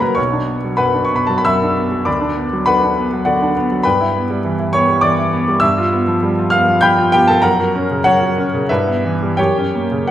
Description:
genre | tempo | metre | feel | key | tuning
classical, romantic character piece for solo piano | 83-102 BPM | 3/4 | rubato | B minor | A4 = 442 Hz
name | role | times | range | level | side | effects
clear baby grand piano | solo | 0.0-10.1 s | B1 to G6 | -13 LUFS | equal | none
room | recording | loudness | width
wet recital hall reverb, RT60 1.4 s | recorded in a church or concert hall | -13 LUFS | side -12 dB against mid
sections
0.0-10.1 A section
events
none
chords
0.2 Bm; 2.1 Bm/D; 3.8 Em/G; 5.6 G7; 7.4 F#; 8.7 Em/G; 9.4 F#

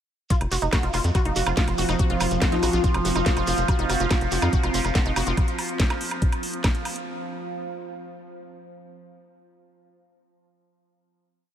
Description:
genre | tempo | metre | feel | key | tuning
psychedelic trance | 142 BPM | 4/4 | straight | unclear | A4 = 440 Hz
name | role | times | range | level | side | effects
overtone-sweeping drone | sustained chords | 0.9-7.1 s | F3 | -30 LUFS | right 3 dB | chorus, built-in reverb, sidechain pumping
wide unison pluck | riff | 0.3-5.3 s | Eb4 to Gb4 | -29 LUFS | right 1 dB | auto-pan, sidechain pumping, tape echo
electronic kick drum | drums | 0.3-6.7 s | none | -22 LUFS | equal | none
garage drum kit | drums | 0.3-7.0 s | hi-hat, snare drum, woodblock | -29 LUFS | equal | none
shekere | percussion | 0.3-5.4 s | none | -35 LUFS | right 4 dB | none
ethereal airy pad | texture | 1.4-5.4 s | C4 to C6 | -30 LUFS | left 2 dB | ensemble chorus, built-in reverb, phaser, sidechain pumping
tight sequencer bass | bass | 0.4-5.3 s | F1 to F2 | -26 LUFS | equal | none
room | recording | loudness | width
moderate huge ambient reverb, RT60 3.9 s | dreamy mix soaked in reverb | -21 LUFS | side -10 dB against mid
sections
0.3-7.1 drop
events
drop 0.3-7.1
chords
0.3 F5

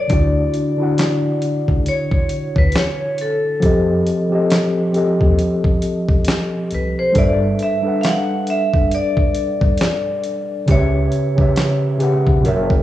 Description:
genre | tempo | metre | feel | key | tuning
lo-fi hip hop | 68 BPM | 4/4 | swing 57% on 16ths | D major | A4 = 441 Hz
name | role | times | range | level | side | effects
vibraphone with hard mallets | melody | 0.0-12.0 s | A4 to F#5 | -21 LUFS | left 1 dB | low-pass filter, cassette tape, tape echo
mellow tine electric piano | accompaniment | 0.0-12.8 s | C#3 to F#5 | -18 LUFS | equal | medium stereo tremolo, low-pass filter, cassette tape
upright bass | bass | 0.1-12.8 s | F#1 to F2 | -21 LUFS | equal | none
dusty soul sampler-style drum kit | drums | 0.1-12.8 s | handclaps, hi-hat, kick drum, snare drum | -18 LUFS | equal | vintage 12-bit sampler grit, cassette tape
room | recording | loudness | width
light reverb, studio ambience | home recording on cassette, studio reverb | -15 LUFS | side -13 dB against mid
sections
0.1-12.8 A section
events
none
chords
0.1 Dmaj7; 3.6 F9; 7.2 G6; 10.7 C#m7b5

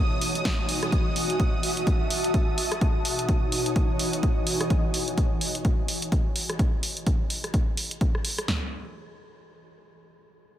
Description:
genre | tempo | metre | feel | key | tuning
piano house | 127 BPM | 4/4 | swing 59% on 16ths | unclear | A4 = 440 Hz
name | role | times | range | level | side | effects
analog string pad | sustained chords | 0.0-4.7 s | D#6 | -36 LUFS | right 1 dB | ensemble chorus, sidechain pumping
ethereal airy pad | texture | 0.0-4.7 s | E3 to A5 | -30 LUFS | equal | ensemble chorus, built-in reverb, sidechain pumping
punchy analog drum machine | drums | 0.2-8.5 s | hi-hat, rim click, snare drum | -31 LUFS | right 1 dB | none
punchy analog drum machine | drums | 0.5-8.6 s | kick drum, snare drum, toms | -24 LUFS | equal | none
room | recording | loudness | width
light reverb, digital ambience | none | -23 LUFS | side -12 dB against mid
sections
0.0-8.5 A section; 8.5-10.6 B section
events
none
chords
0.0 Emaj9; 4.7 N.C.

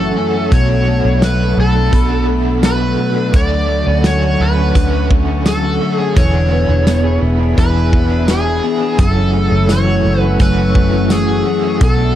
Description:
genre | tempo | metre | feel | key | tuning
dream pop | 85 BPM | 4/4 | straight | F# minor | A4 = 440 Hz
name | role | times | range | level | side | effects
overdriven slide guitar | melody | 0.0-12.2 s | G#4 to D5 | -19 LUFS | equal | digital delay
overdriven electric guitar | accompaniment | 0.0-12.2 s | F#2 to G#4 | -23 LUFS | right 4 dB | tremolo, wide subtle chorus
ethereal airy pad | sustained chords | 0.0-12.2 s | A3 to E6 | -24 LUFS | right 1 dB | ensemble chorus, built-in reverb
clean electric guitar | arpeggios | 0.0-12.2 s | F#2 to G#4 | -17 LUFS | left 3 dB | wide subtle chorus, digital delay
vintage muted fingered electric bass | bass | 0.0-12.2 s | E1 to D2 | -16 LUFS | equal | none
worn celesta | texture | 0.0-12.2 s | A4 to B5 | -31 LUFS | left 2 dB | none
loose indie drum kit | drums | 0.5-12.0 s | hi-hat, kick drum, snare drum, tambourine | -14 LUFS | equal | none
room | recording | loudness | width
light reverb, small room ambience | dark, warm production | -11 LUFS | side -12 dB against mid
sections
0.0-12.2 A section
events
none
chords
0.0 F#m7; 0.5 Bm7; 3.3 Dmaj7; 6.2 E7; 9.0 F#m7

